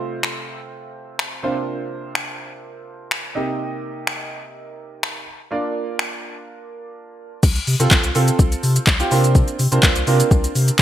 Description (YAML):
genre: dance-pop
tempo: 125 BPM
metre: 4/4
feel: straight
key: unclear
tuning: A4 = 440 Hz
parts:
  - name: clear concert grand piano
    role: accompaniment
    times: 0.0-10.7 s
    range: C3 to Eb5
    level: -24 LUFS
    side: right 3 dB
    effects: analog chorus, sidechain pumping
  - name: smooth R&B drum kit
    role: drums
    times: 0.2-10.8 s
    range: crash cymbal, finger snaps, handclaps, hi-hat, kick drum, shaker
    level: -18 LUFS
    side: left 1 dB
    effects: overdrive, gated reverb
  - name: warm sub bass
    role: bass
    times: 7.4-10.8 s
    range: C2 to C3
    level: -18 LUFS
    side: left 1 dB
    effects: sidechain pumping
room: light reverb, digital ambience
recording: bright 1980s-style digital production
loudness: -17 LUFS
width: side -12 dB against mid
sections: 0.0-7.4 A section; 7.4-10.8 B section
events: drums muted 7.0-7.4; drop 7.4-10.8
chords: 0.0 F/C; 1.4 Bbadd9/C; 3.4 Eb/C; 5.5 Bb; 7.4 F/C; 9.1 Bbadd9/C